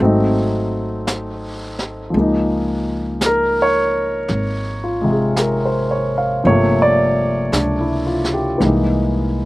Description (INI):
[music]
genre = jazz ballad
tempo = 56 BPM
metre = 4/4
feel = swing 68% on 8ths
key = unclear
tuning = A4 = 440 Hz
[part]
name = warm grand piano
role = accompaniment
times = 0.0-9.5 s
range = C3 to F5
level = -16 LUFS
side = equal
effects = none
[part]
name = upright bass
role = bass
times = 0.0-9.5 s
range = G1 to Db2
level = -23 LUFS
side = equal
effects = none
[part]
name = jazz brush drum kit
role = drums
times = 0.0-9.5 s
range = brushed snare drum, hi-hat, snare drum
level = -26 LUFS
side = equal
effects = none
[sound]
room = little or no reverb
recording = recorded outdoors, with no room sound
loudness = -15 LUFS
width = side -19 dB against mid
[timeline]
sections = 0.0-9.5 A section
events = none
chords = 0.0 Ab7b9; 2.1 Db6; 6.4 Gm11; 8.6 C7alt